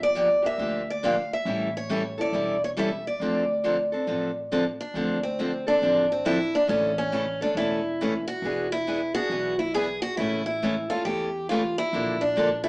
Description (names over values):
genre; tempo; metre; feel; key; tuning
acoustic string swing (jazz manouche); 138 BPM; 4/4; swing 64% on 8ths; D minor; A4 = 440 Hz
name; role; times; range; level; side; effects
picked steel-string acoustic guitar; melody; 0.0-12.7 s; C4 to F5; -25 LUFS; equal; none
upright bass; bass; 0.0-12.6 s; E1 to E2; -37 LUFS; equal; none
picked steel-string acoustic guitar; accompaniment; 0.2-12.7 s; C#3 to A4; -28 LUFS; equal; none
room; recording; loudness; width
wet small room reverb, RT60 0.5 s; band playing live in one room, small speaker sound; -23 LUFS; side -28 dB against mid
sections
0.0-4.9 A section; 4.9-12.7 A section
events
none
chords
0.0 Gm7; 1.5 A7; 3.2 Dm7; 6.7 A; 8.4 E7; 10.2 A; 11.9 Bbmaj7